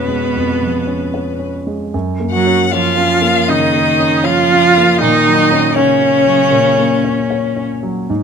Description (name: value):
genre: classical, slow romantic movement for piano quartet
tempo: 78 BPM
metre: 4/4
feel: rubato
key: F# major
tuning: A4 = 440 Hz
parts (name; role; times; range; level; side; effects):
- warm violin; melody; 0.0-7.7 s; B4 to F#5; -17 LUFS; left 8 dB; none
- rich cello; second line; 0.0-7.7 s; B2 to F#3; -20 LUFS; right 6 dB; none
- dark grand piano; accompaniment; 0.0-8.2 s; E#2 to C#5; -18 LUFS; left 1 dB; none
- rich viola; accompaniment; 0.0-7.7 s; B3 to F#4; -15 LUFS; right 3 dB; none
room: moderate recital hall reverb, RT60 1.4 s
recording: close, detailed microphones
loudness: -11 LUFS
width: side -6 dB against mid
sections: 0.0-8.2 A section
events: none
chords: 0.0 C#7/E#; 1.9 F#; 5.0 F#/A#